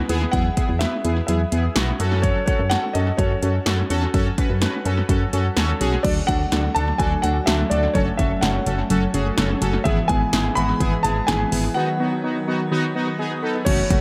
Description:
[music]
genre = synth-pop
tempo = 126 BPM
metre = 4/4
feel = straight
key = E major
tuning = A4 = 445 Hz
[part]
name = warm grand piano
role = melody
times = 0.0-14.0 s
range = C#5 to B5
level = -28 LUFS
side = equal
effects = analog delay, shimmer reverb
[part]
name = solid FM bass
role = bass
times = 0.0-14.0 s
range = F#1 to F#2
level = -25 LUFS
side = equal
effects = none
[part]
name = analog synth brass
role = accompaniment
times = 0.1-14.0 s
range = A3 to B4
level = -28 LUFS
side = equal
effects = chorus, analog delay, shimmer reverb
[part]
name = soft round pluck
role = arpeggios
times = 0.1-14.0 s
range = D#3 to D6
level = -33 LUFS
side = equal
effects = none
[part]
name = deep house drum kit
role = drums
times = 0.1-14.0 s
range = crash cymbal, hi-hat, kick drum, snare drum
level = -26 LUFS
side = equal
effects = overdrive, analog delay
[part]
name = brassy analog pad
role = sustained chords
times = 6.0-13.6 s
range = D#3 to D4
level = -30 LUFS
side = equal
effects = chorus
[sound]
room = light reverb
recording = echo-heavy mix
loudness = -21 LUFS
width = mono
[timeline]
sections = 0.0-6.0 A section; 6.0-13.7 B section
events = break 11.8-13.7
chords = 0.0 Eadd9; 2.0 F#m; 6.0 D; 8.0 F#m; 9.9 E/G#; 11.8 B

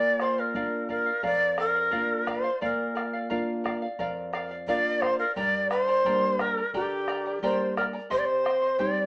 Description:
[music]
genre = andean folk, Andean ensemble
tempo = 87 BPM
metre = 4/4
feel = straight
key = unclear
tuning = A4 = 439 Hz
[part]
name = bright reedy shakuhachi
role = melody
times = 0.0-9.1 s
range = G4 to D5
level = -25 LUFS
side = equal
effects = none
[part]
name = charango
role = accompaniment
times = 0.0-9.1 s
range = G4 to C6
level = -32 LUFS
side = equal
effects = none
[part]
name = nylon-string guitar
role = accompaniment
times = 0.0-9.1 s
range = F2 to F4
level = -34 LUFS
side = equal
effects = none
[part]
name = bombo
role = percussion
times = 0.2-9.0 s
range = none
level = -36 LUFS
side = equal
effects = none
[sound]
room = wet studio reverb, RT60 0.5 s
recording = heard from further back in the room, small speaker sound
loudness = -24 LUFS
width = side -28 dB against mid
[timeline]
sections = 0.0-9.1 A section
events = none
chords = 0.0 Bb; 5.4 Gm; 8.1 Cm

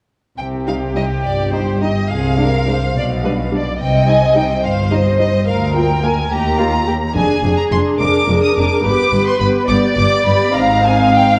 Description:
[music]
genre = quick classical-period movement for symphony orchestra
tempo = 71 BPM (dotted quarters)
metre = 6/8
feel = rubato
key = C minor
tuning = A4 = 442 Hz
[part]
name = clear chamber violin section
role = melody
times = 0.4-11.4 s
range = C5 to Eb6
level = -23 LUFS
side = equal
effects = none
[part]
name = rich chamber violin section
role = second line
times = 0.4-11.4 s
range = F4 to F5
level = -21 LUFS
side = equal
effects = none
[part]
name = clear chamber double bass section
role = bass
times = 0.4-11.4 s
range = F1 to Eb2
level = -24 LUFS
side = equal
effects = none
[part]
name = rich chamber cello section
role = bass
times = 0.4-11.4 s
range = D2 to C3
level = -22 LUFS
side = equal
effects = none
[part]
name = dark studio viola section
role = accompaniment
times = 0.7-11.4 s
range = G3 to Ab4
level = -22 LUFS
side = equal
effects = none
[sound]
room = wet scoring stage reverb, RT60 1.8 s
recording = worn, warbling old tape, cassette tape, warbly pitch drift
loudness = -15 LUFS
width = mono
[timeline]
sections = 0.4-11.4 A section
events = none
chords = 0.4 Cm; 2.1 Dm7b5/C; 3.0 G/B; 3.8 Cm; 5.5 Bb/D; 6.3 Eb; 7.2 Ddim/F; 8.8 G; 10.5 Ab

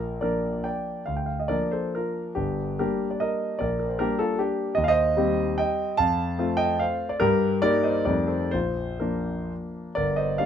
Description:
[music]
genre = classical, romantic triple-time dance for piano with dotted rhythms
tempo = 119-165 BPM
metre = 3/4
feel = rubato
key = Bb major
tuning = A4 = 439 Hz
[part]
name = warm concert grand piano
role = solo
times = 0.0-10.5 s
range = G1 to A5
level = -23 LUFS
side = equal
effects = none
[sound]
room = little or no reverb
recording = close, detailed microphones, faint mains hum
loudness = -23 LUFS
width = side -8 dB against mid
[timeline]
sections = 0.0-10.0 A section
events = none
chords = 0.0 Bb; 1.1 Bb/D; 2.4 Gm; 3.6 Gm/Bb; 4.8 Cm/Eb; 6.0 F; 7.2 Eb/G; 8.1 F9; 8.5 Bb

